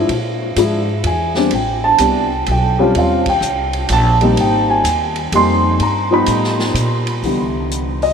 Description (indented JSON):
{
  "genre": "jazz piano trio",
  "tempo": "126 BPM",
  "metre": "3/4",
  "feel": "swing 65% on 8ths",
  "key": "unclear",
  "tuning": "A4 = 440 Hz",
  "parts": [
    { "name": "dark baby grand piano", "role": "melody", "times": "0.0-8.1 s", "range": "D3 to C6", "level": "-14 LUFS", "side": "equal", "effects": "analog chorus, tape echo" },
    { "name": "upright bass", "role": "bass", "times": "0.0-8.1 s", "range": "Ab1 to Bb2", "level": "-19 LUFS", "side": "right 1 dB", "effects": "none" },
    { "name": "vintage drum kit", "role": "drums", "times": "0.1-8.1 s", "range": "hi-hat, kick drum, ride cymbal, snare drum", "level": "-26 LUFS", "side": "right 2 dB", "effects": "none" }
  ],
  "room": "wet huge ambient reverb, RT60 8.1 s",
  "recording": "dreamy mix soaked in reverb",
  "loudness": "-13 LUFS",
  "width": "side -6 dB against mid",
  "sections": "0.0-7.2 A section",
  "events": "band accent 3.2",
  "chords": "0.1 Bb7#11; 1.5 Am9; 3.0 Eb69; 4.4 Abmaj9; 5.8 G7alt; 7.2 Cmaj9"
}